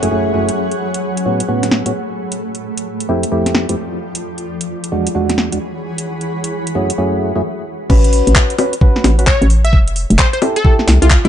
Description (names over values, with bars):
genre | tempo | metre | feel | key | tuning
UK garage, two-step garage | 131 BPM | 4/4 | swing 64% on 16ths | A major | A4 = 440 Hz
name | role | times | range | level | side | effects
percussive organ stab | stabs | 0.0-11.1 s | E2 to B4 | -18 LUFS | equal | lush chorus, ping-pong delay
garage drum kit | drums | 0.0-11.3 s | bongos, crash cymbal, handclaps, hi-hat, snare drum | -18 LUFS | left 1 dB | small room ambience
granular cloud pad | texture | 0.0-11.3 s | E3 to B5 | -23 LUFS | equal | built-in reverb, sidechain pumping
hollow knocking FM bass | bass | 7.9-11.3 s | F1 to C2 | -12 LUFS | equal | sidechain pumping
electronic kick drum | drums | 7.9-11.2 s | none | -12 LUFS | equal | small room ambience
plucky unison lead | melody | 9.3-11.3 s | F4 to E5 | -19 LUFS | equal | phaser, cassette tape, ping-pong delay
room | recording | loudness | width
light reverb | dark, warm production, nothing above 10.3 kHz | -13 LUFS | side -10 dB against mid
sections
0.0-7.9 A section; 7.9-11.3 B section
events
drop 7.9-11.3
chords
0.0 F#m11; 0.6 A6; 2.4 Fmaj9; 4.2 E7; 6.1 F#m11; 7.9 A6; 9.7 Fmaj9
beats
0.11 | 0.57 1.03 1.49 1.94 | 2.40 2.86 3.32 3.78 | 4.23 4.69 5.15 5.61 | 6.07 6.52 6.98 7.44 | 7.90 8.36 8.81 9.27 | 9.73 10.19 10.65 11.10